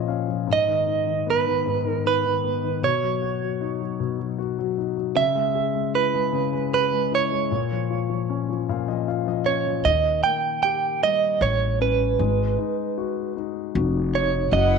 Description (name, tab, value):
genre	acoustic folk-pop ballad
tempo	77 BPM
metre	3/4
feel	straight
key	G# minor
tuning	A4 = 441 Hz
part	direct-recorded clean electric guitar	melody	0.0-14.8 s	B4 to G5	-22 LUFS	right 8 dB	tremolo
part	dark concert grand piano	accompaniment	0.0-14.8 s	G#2 to E#5	-26 LUFS	left 11 dB	none
part	upright bass	bass	9.8-14.8 s	E#1 to D#2	-23 LUFS	left 2 dB	none
part	warm studio string section	sustained chords	14.5-14.8 s	E4 to F#5	-27 LUFS	left 5 dB	none
room	moderate echo chamber reverb, RT60 1.4 s, studio reverb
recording	1960s-style stereo with parts hard left and right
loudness	-21 LUFS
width	side -5 dB against mid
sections	0.0-9.8 A section; 9.8-14.8 B section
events	none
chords	0.5 G#m; 2.8 Badd9; 5.2 C#m7; 7.5 A#m; 9.8 D#7; 12.2 G#m7